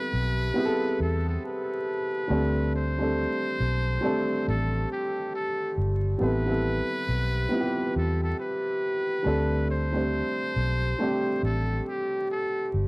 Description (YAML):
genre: hip hop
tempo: 69 BPM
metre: 4/4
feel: swing 61% on 16ths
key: unclear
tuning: A4 = 436 Hz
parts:
  - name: trumpet with metal mute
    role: melody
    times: 0.0-12.7 s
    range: G4 to C5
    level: -32 LUFS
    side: equal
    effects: low-pass filter
  - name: dark upright piano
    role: accompaniment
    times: 0.0-12.9 s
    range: G3 to C5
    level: -27 LUFS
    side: equal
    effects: low-pass filter
  - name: vintage muted fingered electric bass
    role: bass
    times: 0.1-12.9 s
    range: G1 to E2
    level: -26 LUFS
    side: equal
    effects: none
room: wet studio reverb, RT60 0.6 s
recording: worn, warbling old tape, cassette tape, vinyl crackle, warbly pitch drift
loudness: -24 LUFS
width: side -25 dB against mid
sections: 0.0-12.9 A section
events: none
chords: 0.0 Am9; 2.3 D7sus4; 6.2 Am9; 9.3 D7sus4